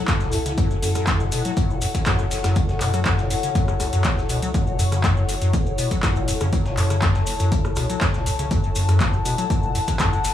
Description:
acid house; 121 BPM; 4/4; straight; F# minor; A4 = 440 Hz
dark analog pad; sustained chords; 0.0-10.3 s; F#5 to A5; -30 LUFS; left 5 dB; chorus, sidechain pumping
acid bass, square; riff; 0.0-10.3 s; F#1 to F#3; -24 LUFS; left 1 dB; overdrive, wide subtle chorus, cassette tape, sidechain pumping, analog delay
granular cloud pad; texture; 0.0-10.3 s; E4 to F#5; -30 LUFS; left 3 dB; built-in reverb, sidechain pumping
booming analog drum machine; drums; 0.1-10.3 s; handclaps, hi-hat, rim click; -27 LUFS; equal
dusty soul sampler-style drum kit; drums; 0.1-10.3 s; hi-hat, snare drum, tambourine; -38 LUFS; left 2 dB
electronic kick drum; drums; 0.1-10.1 s; -24 LUFS; equal
maracas; percussion; 0.1-10.3 s; -36 LUFS; left 5 dB
round analog bass; bass; 0.2-10.3 s; E1 to F#2; -25 LUFS; equal; tube saturation, sidechain pumping
little or no reverb; dry, gritty hardware recording, small room ambience; -19 LUFS; side -11 dB against mid
0.0-10.3 A section
0.0 F#m

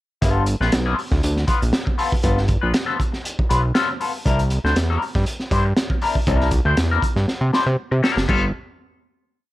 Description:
funk; 119 BPM; 4/4; straight; G mixolydian; A4 = 439 Hz
clean electric guitar; accompaniment; 0.2-8.4 s; B3 to C5; -23 LUFS; left 4 dB; wah
fat analog bass; bass; 0.2-8.5 s; F#1 to C3; -19 LUFS; equal
crunchy breakbeat drum kit; drums; 0.2-8.4 s; crash cymbal, hi-hat, kick drum, snare drum; -22 LUFS; equal
little or no reverb; -17 LUFS; side -16 dB against mid
0.2-8.3 A section; 8.3-9.5 final chord
drum fill 7.3-8.3
0.2 G9; 4.3 C9; 8.3 G9

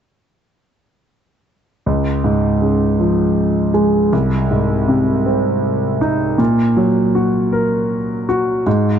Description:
pop; 53 BPM (dotted quarters); 6/8; straight; Db major; A4 = 440 Hz
warm concert grand piano; accompaniment; 1.9-9.0 s; C2 to Bb4; -14 LUFS; equal
light reverb; nothing above 8.0 kHz; -14 LUFS; side -8 dB against mid
1.9-9.0 A section
1.9 Db; 4.1 Ab/C; 6.4 Gb/Bb

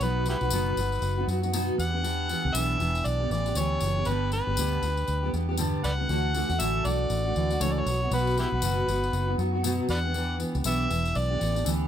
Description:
acoustic pop; 118 BPM; 4/4; swing 60% on 16ths; A4 = 441 Hz
overdriven harmonica; melody; 0.0-11.7 s; E4 to F#5; -30 LUFS; left 1 dB; plate reverb
fingerpicked steel-string acoustic guitar; accompaniment; 0.0-11.9 s; G2 to G4; -30 LUFS; equal; double-tracked left and right
vintage muted fingered electric bass; bass; 0.0-11.9 s; E1 to F#2; -28 LUFS; equal
tambourine; percussion; 0.0-11.8 s; -37 LUFS; left 9 dB
light reverb; -24 LUFS; side -10 dB against mid
0.0-11.9 A section
0.0 B; 1.8 Em7; 4.1 G; 6.1 Dadd9; 7.9 B; 9.9 Em7

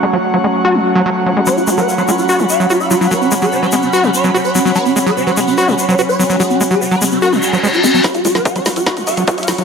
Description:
psychedelic trance; 146 BPM; 4/4; straight; F# minor; A4 = 440 Hz
overtone-sweeping drone; sustained chords; 0.0-9.6 s; F#3 to F#4; -20 LUFS; equal; chorus, built-in reverb, sidechain pumping
overdriven acid bass; riff; 0.0-9.6 s; F#3 to F#4; -16 LUFS; equal; distortion, auto-pan, sidechain pumping, dub echo
airy breathy pad; texture; 0.0-9.6 s; C#4 to C#6; -19 LUFS; right 2 dB; chorus, sidechain pumping
swarming rave lead; melody; 1.5-9.6 s; C#4 to E#5; -17 LUFS; equal; chorus, phaser, sidechain pumping, digital delay
egg shaker; percussion; 1.5-9.6 s; -23 LUFS; left 2 dB
reverse cymbal and riser; sound effects; 7.3-9.6 s; -20 LUFS; left 3 dB
drum and bass drum kit; drums; 8.0-9.6 s; hi-hat, snare drum; -19 LUFS; equal
electronic kick drum; drums; 8.0-9.4 s; -19 LUFS; equal; overdrive, high-pass filter on kick, high-pass filter on room
tight sequencer bass; bass; 8.1-9.6 s; F#1; -27 LUFS; equal; high-pass filter
moderate lush hall reverb, RT60 1.9 s; -11 LUFS; side -6 dB against mid
0.0-8.0 A section; 8.0-9.6 B section
reverse cymbal 7.3-8.0; build-up 8.0-9.6; drum fill 8.0-9.6
0.0 F#5

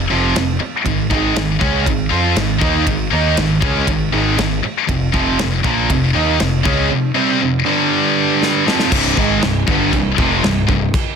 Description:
heavy metal; 119 BPM; 4/4; straight; C phrygian; A4 = 440 Hz
scooped high-gain guitar; riff; 0.0-10.9 s; C2 to F4; -18 LUFS; left 12 dB; distortion
tight distorted guitar; riff; 0.0-10.9 s; C2 to F4; -19 LUFS; right 10 dB; distortion
growling picked electric bass; bass; 0.0-10.9 s; C1 to F2; -20 LUFS; equal; overdrive
modern studio drum kit; drums; 0.4-11.1 s; china cymbal, crash cymbal, kick drum, ride cymbal, snare drum; -21 LUFS; equal
thick fuzz guitar; riff; 8.9-10.9 s; C2 to Ab3; -21 LUFS; equal; distortion
small room ambience; dense, heavily limited modern master; -13 LUFS; side -6 dB against mid
0.0-8.9 A section; 8.9-11.2 B section
drum fill 8.4-8.9
0.0 F5; 0.9 Ab5; 4.9 F5; 7.7 G5; 8.7 F5; 8.9 Cm

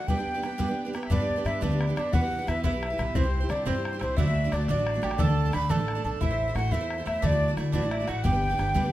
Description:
celtic folk, Celtic jig; 118 BPM (dotted quarters); 6/8; straight; G major; A4 = 440 Hz
hollow wooden flute; melody; 0.0-8.9 s; C5 to B5; -31 LUFS; equal
accordion; second line; 0.0-8.9 s; C5 to B5; -36 LUFS; left 1 dB; light tremolo tuning
picked steel-string acoustic guitar; accompaniment; 0.0-8.9 s; G2 to D5; -30 LUFS; right 3 dB
bodhran; percussion; 0.1-8.8 s; -31 LUFS; left 2 dB
mandolin; second line; 1.1-8.9 s; C4 to B4; -37 LUFS; right 6 dB
upright bass; bass; 1.1-8.9 s; G1 to G2; -28 LUFS; left 1 dB
moderate recital hall reverb, RT60 1.5 s; close, detailed microphones; -24 LUFS; side -14 dB against mid
0.0-1.1 A section; 1.1-8.9 A section
0.1 G; 2.1 Em; 3.2 C; 4.2 D; 5.2 Dsus2; 6.2 Am; 7.2 Dadd9; 8.2 G

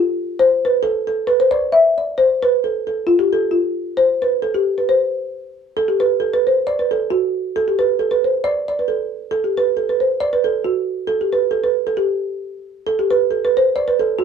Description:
celtic folk; 134 BPM; 2/4; swing 55% on 8ths; C major; A4 = 440 Hz
folk marimba with soft mallets; solo; 0.0-14.2 s; F4 to E5; -16 LUFS; right 1 dB
wet small room reverb, RT60 0.5 s; band playing live in one room; -15 LUFS; side -7 dB against mid
0.0-5.7 A section; 5.7-12.8 B section; 12.8-14.2 B section

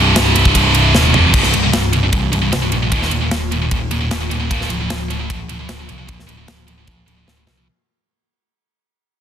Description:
heavy metal; 152 BPM; 4/4; straight; A4 = 437 Hz
scooped high-gain guitar; riff; 0.0-7.7 s; C2 to Bb3; -16 LUFS; right 1 dB; distortion
overdriven picked electric bass; bass; 0.0-7.7 s; C1 to C2; -19 LUFS; equal
tight metal drum kit; drums; 0.2-7.6 s; crash cymbal, kick drum, ride cymbal, snare drum, toms; -19 LUFS; equal
little or no reverb; dense, heavily limited modern master; -13 LUFS; side -9 dB against mid
0.0-1.3 A section; 1.3-7.7 B section
drum fill 0.9-1.3, 7.3-7.7; fade-out 1.3-7.7
0.0 Cm; 1.3 C5; 2.9 Eb5; 4.5 Bb/D

